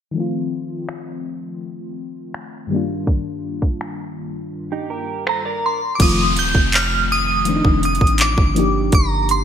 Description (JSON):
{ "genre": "contemporary R&B", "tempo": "82 BPM", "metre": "4/4", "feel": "straight", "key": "unclear", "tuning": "A4 = 438 Hz", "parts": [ { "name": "FM electric piano with soft pad layer", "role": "accompaniment", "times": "0.1-9.4 s", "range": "G2 to G4", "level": "-23 LUFS", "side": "left 3 dB", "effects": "chorus, tremolo" }, { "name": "trap drum kit", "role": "drums", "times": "0.9-9.4 s", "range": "crash cymbal, finger snaps, handclaps, hi-hat, kick drum", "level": "-18 LUFS", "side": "equal", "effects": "gated reverb" }, { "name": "direct-recorded clean electric guitar", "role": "arpeggios", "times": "4.7-5.8 s", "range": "Eb4 to D5", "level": "-27 LUFS", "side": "right 6 dB", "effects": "analog chorus" }, { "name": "glassy synth bell", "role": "melody", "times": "5.3-9.4 s", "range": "Bb5 to G6", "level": "-19 LUFS", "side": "right 1 dB", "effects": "chorus, phaser, ping-pong delay" }, { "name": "soft 808-style bass", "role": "bass", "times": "6.0-9.4 s", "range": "Eb1 to A1", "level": "-22 LUFS", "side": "equal", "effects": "none" }, { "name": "downlifter", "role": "sound effects", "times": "6.0-9.4 s", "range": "none", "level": "-27 LUFS", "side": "right 1 dB", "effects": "none" } ], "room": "light reverb", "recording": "bright 1980s-style digital production, low-pass filter", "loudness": "-16 LUFS", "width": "side -9 dB against mid", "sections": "0.1-6.0 A section; 6.0-9.4 B section", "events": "filter sweep 0.1-6.0; kick muted 4.5-6.0", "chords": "0.1 F7; 2.7 Ebmaj9/G; 5.6 N.C.; 6.0 F7; 8.6 Ebmaj9/G", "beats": "| 0.15 0.88 1.61 2.34 | 3.08 3.81 4.54 5.27 | 6.00 6.73 7.46 8.20 | 8.93" }